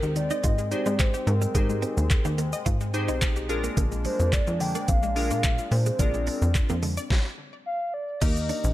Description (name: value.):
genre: dance-pop.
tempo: 108 BPM.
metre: 4/4.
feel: straight.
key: unclear.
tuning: A4 = 436 Hz.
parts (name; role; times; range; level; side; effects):
hollow clarinet-like synth lead; melody; 0.0-8.7 s; Bb4 to G5; -30 LUFS; equal; chorus, digital delay.
glassy digital keys; accompaniment; 0.0-8.7 s; Bb3 to C5; -32 LUFS; left 1 dB; chorus, sidechain pumping.
chorused pulse-width pad; sustained chords; 0.0-8.7 s; Eb3 to G5; -36 LUFS; left 2 dB; sidechain pumping.
wide unison pluck; arpeggios; 0.0-7.1 s; D3 to Eb5; -37 LUFS; left 4 dB; sidechain pumping, digital delay.
plucky analog bass; bass; 0.0-8.7 s; Bb1 to Bb2; -26 LUFS; equal; sidechain pumping.
smooth R&B drum kit; drums; 0.0-8.7 s; crash cymbal, handclaps, hi-hat, kick drum, shaker, snare drum; -26 LUFS; equal; none.
direct-recorded clean electric guitar; riff; 0.2-8.6 s; G3 to F4; -36 LUFS; right 7 dB; ensemble chorus.
room: digital ambience.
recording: none.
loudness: -23 LUFS.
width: side -15 dB against mid.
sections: 0.0-8.2 A section.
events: stop 7.1-8.2.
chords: 0.0 Abmaj7; 3.5 Bb7; 8.2 Ebmaj7.